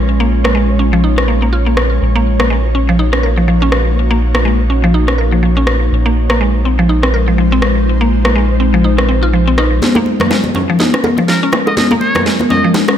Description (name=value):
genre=afro house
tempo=123 BPM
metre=4/4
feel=swing 57% on 16ths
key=Bb minor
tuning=A4 = 436 Hz
part: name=ethereal airy pad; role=sustained chords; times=0.0-13.0 s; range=Ab3 to Db5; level=-18 LUFS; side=left 1 dB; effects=ensemble chorus, built-in reverb
part: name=round analog bass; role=bass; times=0.0-9.8 s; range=Bb1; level=-14 LUFS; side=equal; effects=none
part: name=mallet-like synth pluck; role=arpeggios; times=0.2-12.9 s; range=F3 to Bb4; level=-16 LUFS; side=equal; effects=chorus, cassette tape, ping-pong delay
part: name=house drum kit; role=drums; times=0.4-13.0 s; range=rim click, snare drum, toms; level=-18 LUFS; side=equal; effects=overdrive, high-pass filter on snare, high-pass filter on toms, high-pass filter on room
part: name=congas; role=percussion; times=9.8-12.9 s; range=none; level=-16 LUFS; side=left 2 dB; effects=none
part: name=bongos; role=percussion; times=9.9-13.0 s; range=none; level=-20 LUFS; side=right 3 dB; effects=none
part: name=trumpet with metal mute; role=melody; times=11.3-12.7 s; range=Bb4 to Eb5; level=-17 LUFS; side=equal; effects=low-pass filter, ping-pong delay
room=light reverb, small room ambience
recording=none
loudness=-10 LUFS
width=side -10 dB against mid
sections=0.0-9.8 A section; 9.8-13.0 B section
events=build-up 9.8-13.0; drum fill 9.8-13.0; filter sweep on ambient pad 9.8-13.0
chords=0.0 Bbm7; 2.0 Gb6/Bb; 5.9 Fm7/Bb; 9.8 Bbm7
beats=| 0.06 0.55 1.04 1.53 | 2.02 2.50 2.99 3.48 | 3.97 4.46 4.94 5.43 | 5.92 6.41 6.89 7.38 | 7.87 8.36 8.85 9.33 | 9.82 10.31 10.80 11.28 | 11.77 12.26 12.75